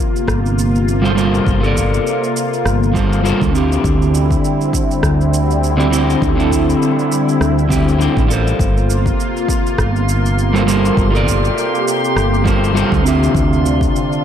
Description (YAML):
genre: sunset chillout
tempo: 101 BPM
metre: 4/4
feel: swing 56% on 16ths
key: G dorian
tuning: A4 = 441 Hz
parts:
  - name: lush unison pad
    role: sustained chords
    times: 0.0-14.2 s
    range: C3 to G4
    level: -19 LUFS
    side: equal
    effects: chorus, phaser
  - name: electronic shaker and rim click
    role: drums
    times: 0.2-14.2 s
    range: none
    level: -26 LUFS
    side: right 2 dB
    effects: overdrive
  - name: mellow fretless electric bass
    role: bass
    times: 0.3-13.9 s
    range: G1 to D2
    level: -16 LUFS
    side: equal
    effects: none
  - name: electronic kick drum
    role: drums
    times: 0.3-13.9 s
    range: none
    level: -20 LUFS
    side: equal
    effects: overdrive
  - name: electric guitar at the edge of break-up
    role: accompaniment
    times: 1.0-14.2 s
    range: D3 to E5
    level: -17 LUFS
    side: right 1 dB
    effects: auto-pan, ping-pong delay
  - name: drifting glass-harmonics texture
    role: texture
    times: 9.2-14.2 s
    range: C6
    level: -25 LUFS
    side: right 2 dB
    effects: chorus, built-in reverb
room: light reverb, digital ambience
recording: dark, warm production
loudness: -12 LUFS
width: side -9 dB against mid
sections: 0.0-14.2 A section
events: none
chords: 0.0 Gm11; 3.8 D9sus4; 8.6 Gm11; 13.3 Dm9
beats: 0.28 0.87 | 1.47 2.06 2.66 3.25 | 3.84 4.44 5.03 5.63 | 6.22 6.82 7.41 8.00 | 8.60 9.19 9.79 10.38 | 10.97 11.57 12.16 12.76 | 13.35 13.94